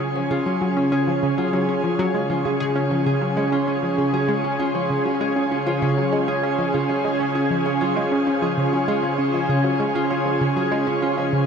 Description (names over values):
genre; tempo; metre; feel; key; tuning
ambient, sequencer-driven space music; 98 BPM; 4/4; straight; Db major; A4 = 440 Hz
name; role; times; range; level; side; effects
lush unison pad; sustained chords; 0.0-11.5 s; Db3 to Ab4; -22 LUFS; equal; chorus
concert harp; arpeggios; 0.0-11.5 s; Db3 to Db5; -26 LUFS; equal; auto-pan, analog delay
analog pluck; riff; 0.0-11.4 s; Db3 to Ab4; -24 LUFS; equal; chorus, cassette tape, analog delay
bubbling stepped-filter texture; texture; 0.0-11.5 s; Ab4 to Ab5; -35 LUFS; left 2 dB; none
room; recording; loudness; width
wet shimmer reverb, RT60 8.5 s; cassette tape; -19 LUFS; side -6 dB against mid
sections
0.0-11.5 A section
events
none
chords
0.0 Db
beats
| 0.31 0.92 1.53 2.15 | 2.76 3.37 3.98 4.59 | 5.21 5.82 6.43 7.04 | 7.66 8.27 8.88 9.49 | 10.11 10.72 11.33